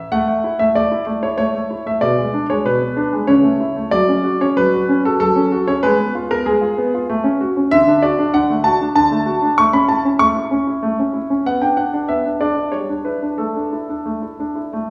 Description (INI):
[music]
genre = classical-period piano sonatina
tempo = 95 BPM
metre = 3/4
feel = rubato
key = A major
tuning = A4 = 442 Hz
[part]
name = clear concert grand piano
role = solo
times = 0.0-14.9 s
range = B2 to C#6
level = -17 LUFS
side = equal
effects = none
[sound]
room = wet recital hall reverb, RT60 1.6 s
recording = heard from further back in the room, small room ambience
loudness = -17 LUFS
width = mono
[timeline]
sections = 0.1-14.9 A section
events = none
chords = 0.1 A5; 2.0 G#dim/B; 3.3 A/C#; 3.9 F#5; 5.8 Fdim/Ab; 7.1 F#m/A; 7.7 D; 9.6 A; 11.5 Bm; 12.7 Em7/G; 13.4 Asus4